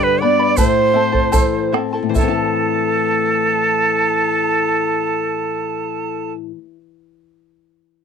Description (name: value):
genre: andean folk, Andean ensemble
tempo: 70-85 BPM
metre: 2/4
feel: straight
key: A minor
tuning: A4 = 441 Hz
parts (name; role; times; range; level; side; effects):
- breathy bright quena; melody; 0.0-6.3 s; A4 to D5; -18 LUFS; right 2 dB; none
- bright reedy pan flute; second line; 0.0-6.3 s; B4 to A5; -22 LUFS; right 15 dB; none
- charango; accompaniment; 0.0-6.8 s; E4 to B5; -23 LUFS; left 3 dB; none
- nylon-string guitar; accompaniment; 0.0-6.8 s; G2 to E4; -21 LUFS; left 14 dB; none
- bombo; percussion; 0.6-2.6 s; none; -19 LUFS; right 1 dB; none
- tube shaker; percussion; 0.6-2.5 s; none; -30 LUFS; right 16 dB; none
room: light reverb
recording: dry, close 1970s-style studio recording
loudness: -15 LUFS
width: side -6 dB against mid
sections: 0.0-2.2 A section; 2.2-5.6 B section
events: slowing down 0.0-2.2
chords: 0.0 G; 0.6 Am